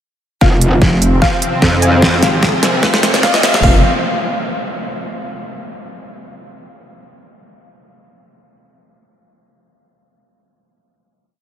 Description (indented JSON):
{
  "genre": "heavy wobble dubstep",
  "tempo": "149 BPM",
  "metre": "4/4",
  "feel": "swing 53% on 16ths, half-time",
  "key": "F minor",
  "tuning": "A4 = 440 Hz",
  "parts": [
    { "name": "wide unison pluck", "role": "melody", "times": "0.4-3.8 s", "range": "F5 to Ab5", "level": "-22 LUFS", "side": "left 1 dB", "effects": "analog chorus, tape echo" },
    { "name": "supersaw pad", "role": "sustained chords", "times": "0.4-3.8 s", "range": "C3 to F5", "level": "-20 LUFS", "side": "equal", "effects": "vintage 12-bit sampler grit, sidechain pumping" },
    { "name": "metallic wobble bass", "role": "bass", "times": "0.4-3.8 s", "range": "F1 to F2", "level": "-13 LUFS", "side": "equal", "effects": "chorus, overdrive" },
    { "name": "dubstep drum kit", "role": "drums", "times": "0.4-3.7 s", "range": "hi-hat, kick drum", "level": "-16 LUFS", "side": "equal", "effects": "overdrive" },
    { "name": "dubstep drum kit", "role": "drums", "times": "0.4-3.6 s", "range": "hi-hat, snare drum", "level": "-17 LUFS", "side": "equal", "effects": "none" },
    { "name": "riser", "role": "sound effects", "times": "1.3-3.6 s", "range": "none", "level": "-24 LUFS", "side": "equal", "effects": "none" },
    { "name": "snarling distorted saw bass", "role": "bass", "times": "0.8-3.6 s", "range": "F1 to Ab1", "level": "-15 LUFS", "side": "equal", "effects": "distortion, overdrive" }
  ],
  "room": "wet cathedral reverb, RT60 6.1 s",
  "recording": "dreamy mix soaked in reverb, high-pass filter",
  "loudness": "-11 LUFS",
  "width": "side -10 dB against mid",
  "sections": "0.4-3.6 build; 3.6-5.2 final chord",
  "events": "build-up 0.4-3.6; drum fill 0.4-3.6; filter sweep 0.4-3.6; riser 1.3-3.6",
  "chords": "0.4 F5"
}